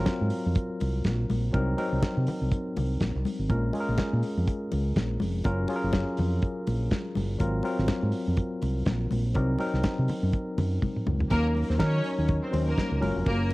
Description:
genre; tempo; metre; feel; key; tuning
disco; 123 BPM; 4/4; swing 56% on 16ths; unclear; A4 = 440 Hz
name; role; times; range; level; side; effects
barky tine electric piano; accompaniment; 0.0-13.5 s; Gb3 to C5; -31 LUFS; left 1 dB; medium stereo tremolo, cassette tape
fingered electric bass; bass; 0.0-13.5 s; F1 to Eb3; -27 LUFS; equal; tube saturation
damped 70s drum kit; drums; 0.1-13.5 s; hi-hat, kick drum, snare drum, toms; -29 LUFS; equal; cassette tape
congas; percussion; 0.1-13.5 s; none; -34 LUFS; left 3 dB; none
clear studio string section; second line; 11.3-13.5 s; Bb3 to Db5; -30 LUFS; equal; cassette tape
room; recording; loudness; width
small room ambience; home recording on cassette; -25 LUFS; side -20 dB against mid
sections
0.0-11.3 A section; 11.3-13.5 B section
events
drum fill 10.8-11.3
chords
0.0 Ab13 (rootless); 1.5 Cm7b5; 3.5 Bbm7; 5.4 Gbmaj7; 7.4 Ab13; 9.4 Cm7b5; 11.3 Ebm7; 13.0 Gbmaj7

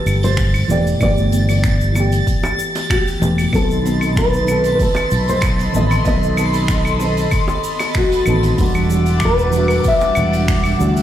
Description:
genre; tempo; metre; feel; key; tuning
sunset chillout; 95 BPM; 4/4; straight; unclear; A4 = 441 Hz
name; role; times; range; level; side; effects
nylon-string guitar; melody; 0.0-11.0 s; F#4 to E5; -20 LUFS; left 1 dB; digital delay
mellow FM electric piano; accompaniment; 0.0-11.0 s; B2 to A4; -22 LUFS; equal; chorus, phaser, auto-pan, digital delay
twinkling granular texture; texture; 0.0-11.0 s; A6; -28 LUFS; right 2 dB; built-in reverb
fretless electric bass; bass; 0.1-11.0 s; E1 to D2; -17 LUFS; equal; none
jazz brush drum kit; drums; 0.1-11.0 s; claves, finger snaps, hi-hat, shaker; -26 LUFS; left 1 dB; none
electronic kick drum; drums; 0.4-10.6 s; none; -19 LUFS; equal; overdrive
bongos; percussion; 2.0-10.1 s; none; -28 LUFS; right 2 dB; none
airy breathy pad; sustained chords; 3.5-11.0 s; G3 to D6; -23 LUFS; equal; chorus, phaser
room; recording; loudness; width
light reverb; played on a big sound system in a bare room, large studio reverb; -14 LUFS; side -11 dB against mid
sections
0.0-11.0 A section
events
none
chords
0.0 G69; 3.5 B7b9; 8.6 Em9

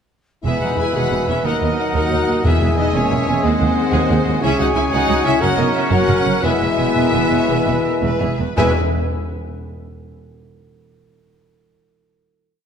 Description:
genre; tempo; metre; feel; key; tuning
cinematic, heroic adventure film score; 108-123 BPM (dotted quarters); 12/8; straight; E lydian; A4 = 440 Hz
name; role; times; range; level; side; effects
clear symphonic violin section; melody; 0.4-8.8 s; B#4 to G#5; -25 LUFS; left 4 dB; none
clear clarinet; second line; 0.4-8.7 s; G#4 to B4; -28 LUFS; left 3 dB; none
silver concert flute; second line; 0.4-8.8 s; F#5 to G#5; -29 LUFS; left 2 dB; none
warm oboe; second line; 0.4-8.7 s; C#5 to E5; -27 LUFS; right 2 dB; none
warm French horn section; sustained chords; 0.4-8.7 s; B#3 to G#4; -23 LUFS; left 8 dB; none
warm trumpet; stabs; 0.4-8.7 s; G#4 to B4; -25 LUFS; right 2 dB; none
rich symphonic cello section; bass; 0.4-8.8 s; C#2 to F#2; -23 LUFS; right 3 dB; none
clear symphonic violin section; second line; 0.5-8.8 s; E4 to B5; -28 LUFS; left 2 dB; none
clear symphonic viola section; accompaniment; 0.5-8.8 s; D#3 to E4; -25 LUFS; right 2 dB; none
clear trombone section; sustained chords; 0.5-8.7 s; B2 to G#3; -27 LUFS; right 2 dB; none
rich symphonic double bass section; bass; 0.5-8.8 s; E1 to D#2; -23 LUFS; right 4 dB; none
timpani; percussion; 2.4-2.9, 8.6-8.7 s; E2; -22 LUFS; left 1 dB; none
room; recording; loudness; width
moderate concert hall reverb, RT60 2.0 s; none; -15 LUFS; side -7 dB against mid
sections
0.5-8.6 theme; 8.6-10.7 final chord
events
slowing down 5.1-8.6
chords
0.5 E; 1.5 D#m; 2.5 E; 3.4 G#7/D#; 4.4 C#m; 5.4 F#; 6.4 E

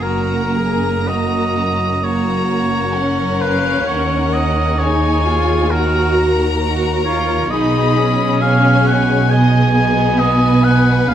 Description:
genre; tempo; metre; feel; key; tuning
classical, slow romantic movement for symphony orchestra; 66 BPM; 4/4; rubato; unclear; A4 = 441 Hz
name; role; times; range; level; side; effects
rich chamber violin section; melody; 0.0-11.1 s; D#5 to B5; -25 LUFS; left 8 dB; none
clear oboe; second line; 0.0-11.1 s; A#4 to G#5; -19 LUFS; equal; none
rich chamber violin section; second line; 0.0-11.1 s; F#4 to B4; -24 LUFS; left 6 dB; none
rich chamber viola section; accompaniment; 0.0-11.1 s; A#3 to F#4; -20 LUFS; right 2 dB; none
rich studio double bass section; bass; 0.0-11.1 s; F#1 to D#2; -20 LUFS; right 2 dB; none
warm chamber cello section; bass; 0.0-11.1 s; D#2 to C#3; -20 LUFS; right 2 dB; none
room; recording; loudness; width
moderate scoring stage reverb, RT60 1.6 s; none; -13 LUFS; side -10 dB against mid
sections
0.0-11.1 A section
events
none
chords
0.0 F#; 3.9 D#m7; 7.5 G#m/B

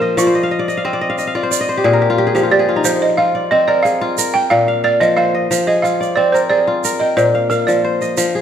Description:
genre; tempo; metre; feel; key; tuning
west african traditional, West African string and xylophone music; 90 BPM; 4/4; straight; unclear; A4 = 438 Hz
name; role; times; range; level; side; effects
balafon; melody; 0.0-8.1 s; F4 to G5; -15 LUFS; right 3 dB; none
kora; arpeggios; 0.0-8.4 s; Bb2 to G5; -16 LUFS; left 2 dB; none
egg shaker; percussion; 0.2-8.3 s; none; -24 LUFS; right 10 dB; none
room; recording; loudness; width
wet recital hall reverb, RT60 1.6 s; none; -13 LUFS; side -9 dB against mid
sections
0.0-8.2 A section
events
balafon solo 0.0-8.2; kora fill 0.2-2.9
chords
0.2 F5; 1.5 Bb5; 2.9 Fm; 4.2 Bb5; 5.5 Fm; 6.8 Bb5

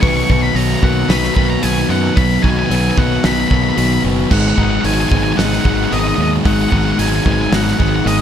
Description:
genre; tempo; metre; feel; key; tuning
post-rock; 112 BPM; 4/4; straight; B major; A4 = 440 Hz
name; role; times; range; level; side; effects
octave-fuzz lead guitar; melody; 0.0-8.2 s; D#5 to C#6; -20 LUFS; left 2 dB; distortion, analog delay
clean electric guitar; arpeggios; 0.0-8.2 s; G#2 to D#4; -24 LUFS; left 3 dB; none
overdriven electric guitar; riff; 0.0-8.2 s; G#2 to B3; -19 LUFS; left 11 dB; none
sludgy distorted guitar; riff; 0.0-8.2 s; G#2 to D#4; -20 LUFS; right 11 dB; overdrive
growling fingered electric bass; bass; 0.0-8.2 s; F#1 to F#2; -19 LUFS; equal; overdrive
loose indie drum kit; drums; 0.0-8.2 s; crash cymbal, hi-hat, kick drum, snare drum; -19 LUFS; right 1 dB; none
room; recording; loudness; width
light reverb, small room ambience; none; -12 LUFS; side -9 dB against mid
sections
0.0-8.2 A section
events
none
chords
0.0 Bmaj7; 4.3 G#m7

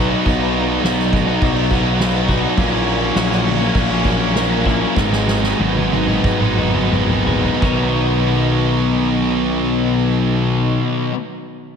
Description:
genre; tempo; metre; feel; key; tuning
post-rock; 83-104 BPM; 4/4; straight; B major; A4 = 440 Hz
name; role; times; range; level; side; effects
warm analog pad; sustained chords; 0.0-10.8 s; B2 to A#5; -29 LUFS; right 2 dB; none
twelve-string electric guitar; arpeggios; 0.0-11.1 s; G#2 to A#4; -22 LUFS; left 1 dB; digital delay, slapback echo
thick fuzz guitar; riff; 0.0-11.2 s; G#2 to D#4; -21 LUFS; left 9 dB; distortion, slapback echo
tight distorted guitar; riff; 0.0-11.1 s; G#2 to F#4; -22 LUFS; right 10 dB; distortion
fuzz picked electric bass; bass; 0.0-10.8 s; G#1 to B1; -21 LUFS; equal; overdrive
soft-mallet drum kit; drums; 0.3-7.8 s; crash cymbal, kick drum, ride cymbal, snare drum, toms; -21 LUFS; equal; none
room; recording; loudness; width
moderate lush hall reverb, RT60 2.4 s; big arena sound; -14 LUFS; side -7 dB against mid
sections
0.0-7.6 A section; 7.6-10.5 B section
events
slowing down 2.6-7.6; drum fill 5.0-7.6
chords
0.0 Bmaj7; 2.6 F#7/A#; 5.0 G#m7; 7.6 Bmaj7

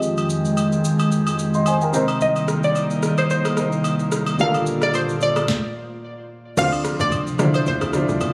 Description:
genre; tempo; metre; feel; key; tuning
amapiano; 110 BPM; 4/4; swing 55% on 16ths; D phrygian; A4 = 442 Hz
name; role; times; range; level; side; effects
warm grand piano; accompaniment; 0.0-8.3 s; C3 to C6; -26 LUFS; equal; low-pass filter
airy breathy pad; sustained chords; 0.0-8.3 s; F2 to G5; -25 LUFS; equal; chorus, sidechain pumping, low-pass filter
smooth R&B drum kit; drums; 0.0-8.3 s; crash cymbal, kick drum, rim click, shaker, snare drum; -30 LUFS; equal; overdrive
agogo bells; percussion; 0.2-8.3 s; none; -33 LUFS; equal; none
analog pluck; melody; 2.2-8.3 s; C5 to F5; -26 LUFS; equal; chorus, low-pass filter, tape echo
saturated sub bass; bass; 2.2-5.5 s; G1 to C2; -30 LUFS; equal; none
tight log drum bass; bass; 6.6-8.3 s; C2 to D3; -28 LUFS; equal; none
room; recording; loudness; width
light reverb, digital ambience; recorded on a phone in the room, club reverb, compression; -20 LUFS; mono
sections
0.0-6.6 A section; 6.6-8.3 B section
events
filter sweep 0.0-6.6; stop 5.5-6.6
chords
0.0 Fm9; 1.9 Cm9; 4.4 Gm9; 6.6 Dm9

